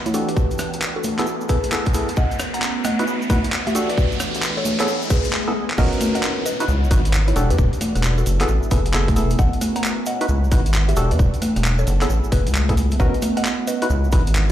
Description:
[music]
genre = UK garage, two-step garage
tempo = 133 BPM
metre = 4/4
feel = swing 65% on 16ths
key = unclear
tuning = A4 = 438 Hz
[part]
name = soft string machine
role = sustained chords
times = 0.0-14.5 s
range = A3 to A4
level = -33 LUFS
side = right 1 dB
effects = phaser, ensemble chorus, sidechain pumping
[part]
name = rubbery square bass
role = bass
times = 0.0-14.5 s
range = E1 to E2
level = -20 LUFS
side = equal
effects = sidechain pumping, high-pass filter
[part]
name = riser, swell and downlifter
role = sound effects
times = 0.4-9.4 s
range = none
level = -30 LUFS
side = equal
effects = none
[part]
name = ethereal airy pad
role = texture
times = 0.0-14.5 s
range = E3 to F#5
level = -30 LUFS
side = right 2 dB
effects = ensemble chorus, built-in reverb, sidechain pumping
[part]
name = mallet-like synth pluck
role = melody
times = 0.1-14.5 s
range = E4 to A#5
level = -29 LUFS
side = left 1 dB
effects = chorus, phaser, dub echo
[part]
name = percussive organ stab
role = stabs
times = 0.1-14.2 s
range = B3 to B4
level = -26 LUFS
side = equal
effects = chorus, dub echo
[part]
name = breakbeat sampler-style drum kit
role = drums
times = 0.1-14.5 s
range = congas, crash cymbal, handclaps, hi-hat, rim click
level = -25 LUFS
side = equal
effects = studio reverb
[part]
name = cabasa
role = percussion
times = 0.1-14.5 s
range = none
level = -36 LUFS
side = right 4 dB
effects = none
[part]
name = electronic kick drum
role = drums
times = 0.4-14.2 s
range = none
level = -18 LUFS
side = equal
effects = studio reverb
[sound]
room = light reverb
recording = played on a big sound system in a bare room, large studio reverb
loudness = -17 LUFS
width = side -12 dB against mid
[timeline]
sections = 0.0-5.8 A section; 5.8-14.5 B section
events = build-up 0.0-5.8; filter sweep on synth stab 0.0-5.8; riser 0.4-5.3; swell 4.9-5.8; break 5.3-5.8; drum fill 5.3-5.8; drop 5.8-14.5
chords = 0.1 Em11; 1.0 F#m11; 2.2 G#m11; 2.8 C#m11; 3.7 Em11; 4.7 F#m11; 5.8 G#m11; 6.5 C#m11; 7.4 Em11; 8.3 F#m11; 9.4 G#m11; 10.1 C#m11; 11.0 Em11; 11.9 F#m11; 13.0 G#m11; 13.7 C#m11

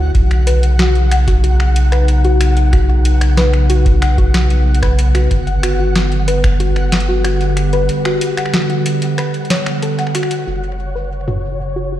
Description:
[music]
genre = IDM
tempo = 93 BPM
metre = 4/4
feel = straight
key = unclear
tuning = A4 = 440 Hz
[part]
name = warbly tape-like pad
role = sustained chords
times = 0.0-12.0 s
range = C#3 to B4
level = -21 LUFS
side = right 1 dB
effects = chorus, built-in reverb, sidechain pumping
[part]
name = soft round pluck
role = arpeggios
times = 0.0-12.0 s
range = F#4 to F#5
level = -21 LUFS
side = left 3 dB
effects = wide subtle chorus, cassette tape, digital delay
[part]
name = round analog bass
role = bass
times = 0.0-12.0 s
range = F#1 to D2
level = -14 LUFS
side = equal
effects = none
[part]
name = flickering grainy texture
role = texture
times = 0.0-12.0 s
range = C#5 to F#5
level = -28 LUFS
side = equal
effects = built-in reverb, sidechain pumping
[part]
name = electro analog drum machine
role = drums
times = 0.1-11.4 s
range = finger snaps, hi-hat, snare drum, toms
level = -21 LUFS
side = equal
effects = low-pass filter on hats, studio reverb, low-pass filter on snare, low-pass filter on toms, ping-pong delay
[part]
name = electronic kick drum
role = drums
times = 0.1-6.6 s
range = none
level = -14 LUFS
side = equal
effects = studio reverb
[sound]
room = light reverb, digital ambience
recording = played on a big sound system in a bare room, large studio reverb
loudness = -12 LUFS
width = side -13 dB against mid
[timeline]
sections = 0.0-10.5 A section; 10.5-12.0 B section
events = break 7.9-10.5; filter sweep on drum 10.5-12.0; filter sweep on ambient pad 10.5-12.0; filter sweep on synth arpeggio sound 10.5-12.0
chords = 0.1 Badd9; 5.3 G; 10.5 F#m7

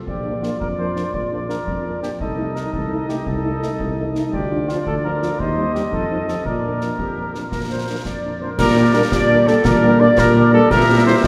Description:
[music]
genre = military-style march for wind band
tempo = 113 BPM (dotted quarters)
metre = 6/8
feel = straight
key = Bb major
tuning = A4 = 442 Hz
[part]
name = warm woodwind section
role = second line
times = 0.0-11.3 s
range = Eb4 to E5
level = -26 LUFS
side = equal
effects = none
[part]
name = mellow cornet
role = melody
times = 0.1-11.3 s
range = F4 to D5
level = -26 LUFS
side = equal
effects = none
[part]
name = mellow tuba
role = bass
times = 0.1-11.3 s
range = Bb1 to Bb2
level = -23 LUFS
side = equal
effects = none
[part]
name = concert bass drum, concert snare drum and clash cymbals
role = drums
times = 0.1-11.3 s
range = none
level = -29 LUFS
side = equal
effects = none
[part]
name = mellow French horn section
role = accompaniment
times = 0.2-11.1 s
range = F3 to F4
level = -27 LUFS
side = equal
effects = none
[part]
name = small flute group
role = second line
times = 8.0-11.3 s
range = A4 to D5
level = -26 LUFS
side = equal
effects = none
[part]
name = mellow trombone section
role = sustained chords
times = 8.6-11.3 s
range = E3 to D4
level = -27 LUFS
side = equal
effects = none
[sound]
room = wet church reverb, RT60 3.4 s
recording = recorded in a church or concert hall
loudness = -18 LUFS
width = mono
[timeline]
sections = 0.0-8.6 A section; 8.6-11.3 B section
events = none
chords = 0.1 Bb; 2.2 Adim/C; 4.3 Bb/D; 5.4 Cm/Eb; 5.9 F7; 6.5 Bb; 8.6 Gm/Bb; 10.7 C7/Bb

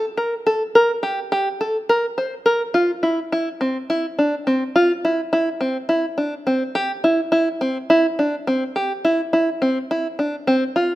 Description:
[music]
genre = contemporary instrumental, contemporary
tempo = 210 BPM (eighths)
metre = 7/8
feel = straight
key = C mixolydian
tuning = A4 = 442 Hz
[part]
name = open-back banjo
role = solo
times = 0.0-10.9 s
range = C4 to C5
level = -18 LUFS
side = equal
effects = none
[sound]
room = moderate recital hall reverb, RT60 1.5 s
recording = close, detailed microphones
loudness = -18 LUFS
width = side -16 dB against mid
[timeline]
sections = 0.0-2.8 A section; 2.8-11.0 B section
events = none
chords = none

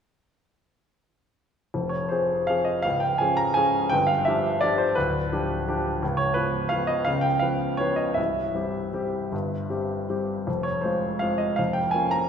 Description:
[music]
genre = classical, piano waltz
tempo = 153-180 BPM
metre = 3/4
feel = rubato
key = F minor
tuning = A4 = 440 Hz
[part]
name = clear grand piano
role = solo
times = 1.7-12.3 s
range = C1 to Bb5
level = -22 LUFS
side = equal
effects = none
[sound]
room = wet concert hall reverb, RT60 2.2 s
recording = recorded in a church or concert hall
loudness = -22 LUFS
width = side -7 dB against mid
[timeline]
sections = 1.7-12.3 A section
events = none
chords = 1.7 Fm; 2.8 Db; 3.9 G7; 6.0 Db7; 8.2 C; 10.5 Fm; 11.6 Bbm/F

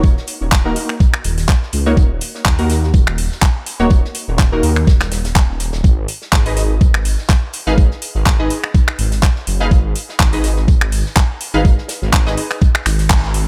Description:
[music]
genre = bass house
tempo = 124 BPM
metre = 4/4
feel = swing 55% on 16ths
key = unclear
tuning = A4 = 442 Hz
[part]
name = phased detuned saw bass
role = bass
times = 0.0-13.5 s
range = Eb1 to Eb2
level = -21 LUFS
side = equal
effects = phaser, tube saturation, sidechain pumping
[part]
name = electronic kick drum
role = drums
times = 0.0-13.2 s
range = none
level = -14 LUFS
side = equal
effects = small room ambience
[part]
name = loose indie drum kit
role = drums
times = 0.0-13.5 s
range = hi-hat, snare drum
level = -36 LUFS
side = equal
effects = sidechain pumping on hats, high-pass filter on hats, small room ambience, high-pass filter on snare, high-pass filter on room
[part]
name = garage drum kit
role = drums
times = 0.3-13.4 s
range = finger snaps, handclaps, hi-hat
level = -22 LUFS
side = equal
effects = small room ambience
[part]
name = orchestra-hit-like synth stab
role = stabs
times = 0.7-13.4 s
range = Bb3 to F5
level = -23 LUFS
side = equal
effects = built-in reverb, sidechain pumping, delay
[sound]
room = little or no reverb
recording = none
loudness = -15 LUFS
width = mono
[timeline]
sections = 0.0-13.5 A section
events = band accent 13.1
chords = 0.0 Ebm; 5.8 Abm

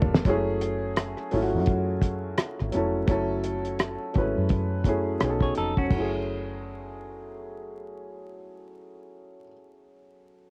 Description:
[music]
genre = R&B, neo-soul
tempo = 85 BPM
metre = 4/4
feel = swing 60% on 16ths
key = F# minor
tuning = A4 = 440 Hz
[part]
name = warm upright piano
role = accompaniment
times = 0.0-10.5 s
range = F#3 to B4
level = -31 LUFS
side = equal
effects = cassette tape
[part]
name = deep dub fingered electric bass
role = bass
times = 0.0-9.4 s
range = F1 to F#2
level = -33 LUFS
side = equal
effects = none
[part]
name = cloth-damped thuddy drum kit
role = drums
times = 0.0-6.1 s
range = crash cymbal, hi-hat, kick drum, rim click, snare drum, toms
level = -27 LUFS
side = equal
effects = cassette tape
[part]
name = semi-hollow electric guitar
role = second line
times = 5.4-6.1 s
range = C#4 to C#5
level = -31 LUFS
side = equal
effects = cassette tape
[sound]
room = little or no reverb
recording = home recording on cassette, vinyl crackle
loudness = -26 LUFS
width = mono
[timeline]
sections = 0.3-5.9 A section; 5.9-8.7 B section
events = drum fill 0.0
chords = 0.3 F#m9; 5.2 B9; 5.9 F#m9

